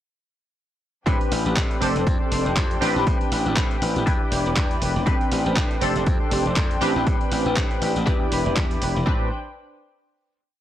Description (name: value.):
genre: filtered disco house.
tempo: 120 BPM.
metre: 4/4.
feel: swing 57% on 16ths.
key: A minor.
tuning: A4 = 440 Hz.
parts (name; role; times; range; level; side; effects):
funky polysynth comp; accompaniment; 1.1-9.3 s; C4 to B4; -26 LUFS; equal; chorus, phaser, sidechain pumping.
muted studio string section; sustained chords; 1.1-9.3 s; C4 to G5; -32 LUFS; left 2 dB; vintage 12-bit sampler grit, sidechain pumping.
direct-recorded clean electric guitar; riff; 1.1-9.3 s; A3 to C5; -30 LUFS; left 2 dB; analog chorus, sidechain pumping.
slap bass; bass; 1.1-9.3 s; E1 to A2; -26 LUFS; equal; sidechain pumping.
dusty soul sampler-style drum kit; drums; 1.1-8.9 s; handclaps, hi-hat; -29 LUFS; right 1 dB; sidechain pumping on hats.
electronic kick drum; drums; 1.1-9.2 s; none; -23 LUFS; equal; overdrive.
room: digital ambience.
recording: dry, gritty hardware recording, transformer saturation.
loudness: -19 LUFS.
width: side -12 dB against mid.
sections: 1.1-9.1 drop; 9.1-10.6 final chord.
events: drop 1.1-9.1.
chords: 1.1 Am11; 1.8 F69; 2.8 Am11; 4.1 Em7; 5.1 Am11; 5.8 F69; 6.8 Am11; 8.1 Em7; 9.1 Am11.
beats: | 1.07 1.57 2.07 2.57 | 3.07 3.57 4.07 4.57 | 5.07 5.57 6.07 6.57 | 7.07 7.57 8.07 8.57 | 9.07.